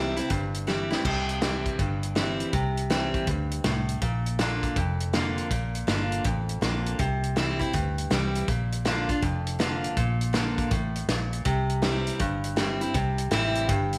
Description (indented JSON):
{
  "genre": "honky-tonk and classic country",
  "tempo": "161 BPM",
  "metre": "4/4",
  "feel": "swing 64% on 8ths",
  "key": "C mixolydian",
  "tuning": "A4 = 440 Hz",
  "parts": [
    { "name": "picked steel-string acoustic guitar", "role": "accompaniment", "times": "0.0-14.0 s", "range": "F2 to F4", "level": "-30 LUFS", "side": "equal", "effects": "none" },
    { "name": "vintage muted fingered electric bass", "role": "bass", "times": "0.0-14.0 s", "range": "F1 to D2", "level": "-32 LUFS", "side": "equal", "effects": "none" },
    { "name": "natural country drum kit", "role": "drums", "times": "0.2-14.0 s", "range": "crash cymbal, hi-hat, kick drum, snare drum", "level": "-32 LUFS", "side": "equal", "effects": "none" }
  ],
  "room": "moderate plate reverb, RT60 1.4 s",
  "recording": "none",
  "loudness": "-27 LUFS",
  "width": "mono",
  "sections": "0.0-1.0 A section; 1.0-12.9 A section; 12.9-14.0 B section",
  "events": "drum fill 0.7-1.0",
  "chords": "0.0 C; 4.0 Bb; 7.0 C; 8.5 Bb; 11.5 C"
}